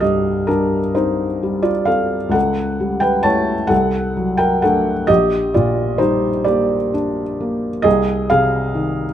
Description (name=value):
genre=classical, romantic nocturne for solo piano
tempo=44 BPM (dotted quarters)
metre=12/8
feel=rubato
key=G minor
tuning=A4 = 440 Hz
part: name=felt-muted upright piano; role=solo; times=0.0-9.1 s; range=Bb1 to A5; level=-15 LUFS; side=equal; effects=none
room=light reverb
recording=close, detailed microphones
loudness=-15 LUFS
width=side -10 dB against mid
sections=0.0-9.1 A section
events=none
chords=0.0 Cm; 2.4 A7/C#; 3.7 D7/C; 5.1 Gm/Bb; 7.9 Ab/C